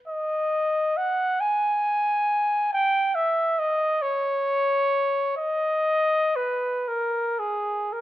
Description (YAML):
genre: classical, free, expressive piece for unaccompanied trumpet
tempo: 36-48 BPM (dotted quarters)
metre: 6/8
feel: rubato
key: unclear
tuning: A4 = 440 Hz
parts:
  - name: mellow trumpet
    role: solo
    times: 0.1-8.0 s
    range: G#4 to G#5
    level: -22 LUFS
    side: equal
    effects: none
room: light reverb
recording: close, detailed microphones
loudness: -22 LUFS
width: side -14 dB against mid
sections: 0.0-8.0 A section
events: none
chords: none